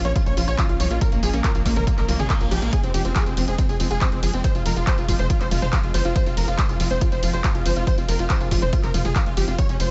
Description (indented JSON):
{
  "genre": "uplifting trance",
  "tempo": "140 BPM",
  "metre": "4/4",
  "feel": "straight",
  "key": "F minor",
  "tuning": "A4 = 435 Hz",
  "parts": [
    { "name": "dense compressed supersaw", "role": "melody", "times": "0.0-9.9 s", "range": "Bb3 to Db5", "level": "-31 LUFS", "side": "equal", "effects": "sidechain pumping, tape echo" },
    { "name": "bright baby grand piano", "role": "second line", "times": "0.0-9.9 s", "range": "Bb3 to Db5", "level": "-34 LUFS", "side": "equal", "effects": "sidechain pumping, tape echo" },
    { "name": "shimmering ambient pad", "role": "sustained chords", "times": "0.0-9.9 s", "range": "F3 to Db4", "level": "-36 LUFS", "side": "equal", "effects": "none" },
    { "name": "analog pluck", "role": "arpeggios", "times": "0.0-9.9 s", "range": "F3 to Ab4", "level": "-33 LUFS", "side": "equal", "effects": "chorus, sidechain pumping, tape echo" },
    { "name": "tight sequencer bass", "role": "bass", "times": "0.0-9.9 s", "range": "F1 to C2", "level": "-27 LUFS", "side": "equal", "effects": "sidechain pumping" },
    { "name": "punchy analog drum machine", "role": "drums", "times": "0.1-9.9 s", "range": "handclaps, hi-hat, ride cymbal, tambourine, toms", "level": "-31 LUFS", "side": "equal", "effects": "none" },
    { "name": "electronic kick drum", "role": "drums", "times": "0.2-9.7 s", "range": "none", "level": "-24 LUFS", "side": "equal", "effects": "none" },
    { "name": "reverse cymbal", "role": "sound effects", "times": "2.0-2.7 s", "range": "none", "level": "-41 LUFS", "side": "equal", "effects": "none" }
  ],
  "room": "little or no reverb",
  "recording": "nothing above 7.9 kHz",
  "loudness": "-21 LUFS",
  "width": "mono",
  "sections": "0.0-9.9 A section",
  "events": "reverse cymbal 2.0-2.7",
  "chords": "0.0 Bbm7; 2.7 Fm"
}